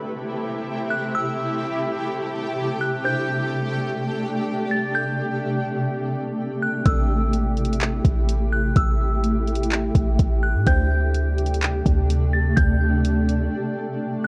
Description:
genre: hip hop, atmospheric cloud-rap.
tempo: 126 BPM.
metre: 4/4.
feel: half-time.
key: A minor.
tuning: A4 = 440 Hz.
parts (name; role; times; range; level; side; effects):
delicate synth tine bell; melody; 0.0-14.3 s; E6 to A6; -31 LUFS; equal; chorus, low-pass filter, tape echo.
shimmering ambient pad; sustained chords; 0.0-14.3 s; C3 to G4; -27 LUFS; equal; chorus, built-in reverb, sidechain pumping.
buzzing kalimba; texture; 0.0-14.3 s; C4 to G5; -39 LUFS; equal; none.
clean 808-style bass; bass; 6.9-13.5 s; A1 to A2; -24 LUFS; equal; none.
smooth R&B drum kit; drums; 6.9-13.4 s; handclaps, hi-hat, kick drum; -24 LUFS; equal; none.
room: little or no reverb.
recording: worn, warbling old tape, cassette tape, warbly pitch drift.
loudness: -22 LUFS.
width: mono.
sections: 0.0-14.3 A section.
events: break 13.5-14.3.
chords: 0.0 Am7; 3.0 D7sus4; 6.9 Am7; 10.7 D7sus4.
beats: 0.19 0.67 | 1.14 1.62 2.10 2.57 | 3.05 3.52 4.00 4.48 | 4.95 5.43 5.91 6.38 | 6.86 7.33 7.81 8.29 | 8.76 9.24 9.71 10.19 | 10.67 11.14 11.62 12.10 | 12.57 13.05 13.52 14.00.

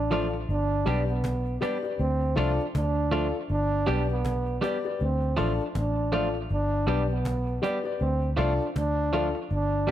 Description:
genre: roots reggae.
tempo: 80 BPM.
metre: 4/4.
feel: swing 59% on 16ths.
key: D dorian.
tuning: A4 = 440 Hz.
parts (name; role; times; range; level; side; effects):
breathy trombone; second line; 0.0-9.9 s; B3 to D4; -29 LUFS; right 2 dB; tape echo.
vintage muted fingered electric bass; bass; 0.0-9.9 s; G1 to D2; -28 LUFS; equal; none.
semi-hollow electric guitar; accompaniment; 0.1-9.9 s; F3 to G4; -33 LUFS; right 3 dB; tape echo.
clear upright piano; stabs; 0.1-9.9 s; F4 to D5; -33 LUFS; left 6 dB; none.
cajon; drums; 0.1-9.9 s; none; -36 LUFS; equal; none.
room: light reverb, studio ambience.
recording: none.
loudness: -24 LUFS.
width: side -12 dB against mid.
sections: 0.0-9.9 A section.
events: none.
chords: 0.5 G; 2.0 Dm; 3.5 G; 5.0 Dm; 6.5 G; 8.0 Dm.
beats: | 0.48 1.24 1.99 2.74 | 3.49 4.24 4.99 5.75 | 6.50 7.25 8.00 8.75 | 9.50.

